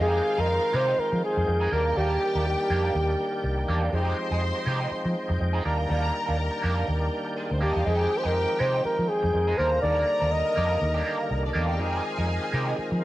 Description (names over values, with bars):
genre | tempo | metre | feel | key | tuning
disco | 122 BPM | 4/4 | swing 56% on 16ths | F dorian | A4 = 441 Hz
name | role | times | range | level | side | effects
breathy flugelhorn | melody | 0.0-3.4, 7.6-11.3 s | G4 to Eb5 | -26 LUFS | equal | cassette tape, tape echo
bright studio violin section | second line | 0.0-13.0 s | Ab3 to C6 | -34 LUFS | left 2 dB | cassette tape
electric guitar at the edge of break-up | accompaniment | 0.0-12.9 s | Ab3 to Bb4 | -32 LUFS | right 2 dB | wah, cassette tape
overdriven tonewheel organ | sustained chords | 0.0-13.0 s | D3 to G5 | -32 LUFS | equal | chorus vibrato, slow rotary speaker, cassette tape
vintage muted fingered electric bass | bass | 0.0-13.0 s | C2 to F3 | -27 LUFS | equal | none
room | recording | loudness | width
small room ambience | home recording on cassette | -23 LUFS | side -16 dB against mid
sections
0.0-13.0 A section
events
none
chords
0.0 Fm9; 1.7 Ebmaj7; 3.9 Fm9; 5.6 Ebmaj7; 7.9 Fm9; 9.6 Ebmaj7; 11.8 Fm9